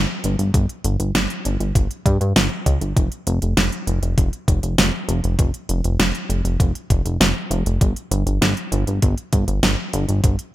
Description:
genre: synthwave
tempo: 99 BPM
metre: 4/4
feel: straight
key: unclear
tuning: A4 = 440 Hz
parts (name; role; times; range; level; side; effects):
- chorused synth bass; bass; 0.0-10.4 s; F1 to G2; -20 LUFS; equal; tube saturation
- pop drum kit; drums; 0.2-10.5 s; hi-hat, snare drum; -21 LUFS; right 1 dB; none
- electronic kick drum; drums; 0.5-10.4 s; none; -18 LUFS; equal; overdrive
room: light reverb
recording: bright 1980s-style digital production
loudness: -17 LUFS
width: side -15 dB against mid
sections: 0.0-10.5 A section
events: none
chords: none

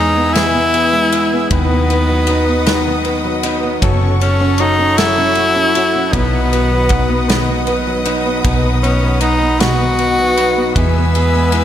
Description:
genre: six-eight pop ballad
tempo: 52 BPM (dotted quarters)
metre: 6/8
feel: straight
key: unclear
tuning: A4 = 440 Hz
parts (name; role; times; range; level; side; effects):
- clear tenor saxophone; melody; 0.0-11.6 s; B3 to F#4; -16 LUFS; left 1 dB; none
- fingerpicked steel-string acoustic guitar; accompaniment; 0.0-11.6 s; B2 to B4; -19 LUFS; right 2 dB; slapback echo
- rich studio string section; sustained chords; 0.0-11.6 s; A4 to E6; -22 LUFS; left 1 dB; none
- direct-recorded clean electric guitar; arpeggios; 0.0-11.6 s; B2 to B4; -25 LUFS; left 6 dB; vibrato effect, ping-pong delay
- vintage muted fingered electric bass; bass; 0.0-11.6 s; F#1 to E2; -18 LUFS; equal; none
- loose indie drum kit; drums; 0.4-11.6 s; kick drum, ride cymbal, snare drum; -21 LUFS; equal; none
room: moderate lush hall reverb, RT60 2.9 s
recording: big arena sound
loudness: -12 LUFS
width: side -10 dB against mid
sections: 0.0-11.6 A section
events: none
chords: 0.0 E; 1.5 B/D#; 3.8 F#m; 6.1 B; 10.8 E

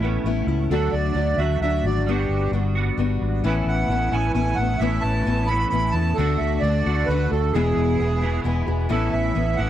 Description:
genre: rock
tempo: 132 BPM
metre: 3/4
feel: straight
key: A major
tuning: A4 = 440 Hz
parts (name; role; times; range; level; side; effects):
- picked acoustic archtop guitar; accompaniment; 0.0-9.7 s; E2 to G#4; -26 LUFS; left 10 dB; none
- clean electric guitar; riff; 0.0-9.7 s; E2 to F#4; -28 LUFS; right 6 dB; ensemble chorus
- fingered electric bass; bass; 0.0-9.7 s; E1 to E2; -23 LUFS; equal; none
- accordion; melody; 0.7-9.7 s; G4 to B5; -25 LUFS; right 4 dB; none
- rich symphonic string section; sustained chords; 3.4-9.7 s; B3 to B4; -35 LUFS; left 2 dB; none
room: little or no reverb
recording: dry, close 1970s-style studio recording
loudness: -19 LUFS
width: side -11 dB against mid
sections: 0.0-8.9 A section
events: none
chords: 0.0 Aadd9; 0.7 D; 2.1 Gmaj7; 3.4 Aadd9; 6.2 D; 7.5 E; 8.9 Aadd9

